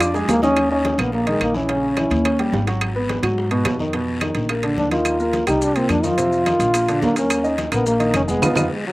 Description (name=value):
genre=Afro-Cuban jazz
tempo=214 BPM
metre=4/4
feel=straight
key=Eb minor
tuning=A4 = 440 Hz
part: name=mellow trombone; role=melody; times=0.0-2.6, 4.8-8.9 s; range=Gb3 to F4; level=-20 LUFS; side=equal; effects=none
part: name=warm upright piano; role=accompaniment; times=0.0-8.7 s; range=Bb2 to Eb6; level=-22 LUFS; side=equal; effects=none
part: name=upright bass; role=bass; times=0.0-8.7 s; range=F1 to Ab2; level=-24 LUFS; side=equal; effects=none
part: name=bongos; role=percussion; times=0.0-8.6 s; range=none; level=-33 LUFS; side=left 4 dB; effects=none
part: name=claves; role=percussion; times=0.0-8.6 s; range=none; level=-28 LUFS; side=equal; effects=none
part: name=congas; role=percussion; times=0.0-8.6 s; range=none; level=-30 LUFS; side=left 2 dB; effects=slapback echo
part: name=guiro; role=percussion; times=0.0-8.6 s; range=none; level=-36 LUFS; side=left 4 dB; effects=slapback echo
part: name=maracas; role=percussion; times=0.0-0.6, 5.1-8.6 s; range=none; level=-34 LUFS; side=left 4 dB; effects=none
part: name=timbales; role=percussion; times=0.0-8.6 s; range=none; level=-26 LUFS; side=right 4 dB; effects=none
room=little or no reverb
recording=recorded outdoors, with no room sound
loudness=-17 LUFS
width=side -19 dB against mid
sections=0.6-8.9 A section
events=drum fill 0.0-0.6; band accent 8.4-8.9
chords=0.0 Bb7; 0.6 Eb5; 1.7 Bbdim; 2.3 Eb7; 2.8 Abm7; 3.9 Bmaj7#11; 4.5 Bb; 5.1 Ebsus2; 5.6 C5; 6.2 F5; 6.7 Bb; 7.3 Eb5